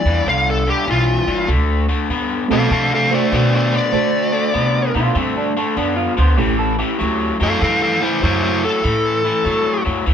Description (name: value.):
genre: blues.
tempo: 98 BPM.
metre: 4/4.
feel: swing 66% on 8ths.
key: D mixolydian.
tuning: A4 = 439 Hz.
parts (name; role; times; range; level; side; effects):
smooth overdriven lead guitar; melody; 0.0-9.8 s; E4 to F5; -18 LUFS; equal; none.
crunchy overdriven guitar; riff; 0.1-10.1 s; G2 to B3; -20 LUFS; left 4 dB; none.
upright bass; bass; 0.1-10.1 s; G1 to D3; -20 LUFS; equal; none.
reed electric piano; accompaniment; 2.5-8.1 s; A3 to C5; -22 LUFS; right 7 dB; fast tremolo.
electric guitar through a small old amp; second line; 5.0-7.3 s; C4 to C5; -22 LUFS; right 4 dB; none.
room: light reverb.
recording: band playing live in one room.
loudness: -15 LUFS.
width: side -8 dB against mid.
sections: 0.0-10.1 A section.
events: none.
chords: 0.0 G7; 1.5 D7; 6.4 A7.